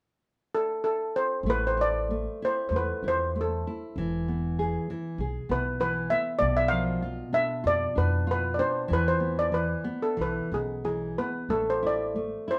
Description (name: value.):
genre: fado-style ballad.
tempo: 95 BPM.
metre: 4/4.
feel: uneven beats, rubato.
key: A harmonic minor.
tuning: A4 = 443 Hz.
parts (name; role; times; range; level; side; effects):
steel pan; melody; 0.5-12.6 s; G#4 to F5; -29 LUFS; equal; none.
upright bass; bass; 1.4-12.3 s; E1 to F2; -34 LUFS; equal; none.
nylon-string guitar; accompaniment; 1.5-12.6 s; B2 to G#4; -34 LUFS; equal; none.
room: moderate large studio reverb, RT60 0.8 s.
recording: band playing live in one room.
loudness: -28 LUFS.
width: mono.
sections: 0.0-1.4 A section; 1.4-12.6 B section.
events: none.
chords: 0.0 N.C.; 1.4 A5; 4.0 E; 6.4 Bdim; 8.9 E5; 11.5 A5.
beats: 0.18 0.80 | 1.44 2.08 2.71 3.33 | 3.95 4.57 5.19 5.80 | 6.41 7.02 7.64 8.27 | 8.89 9.53 10.18 10.83 | 11.49 12.15.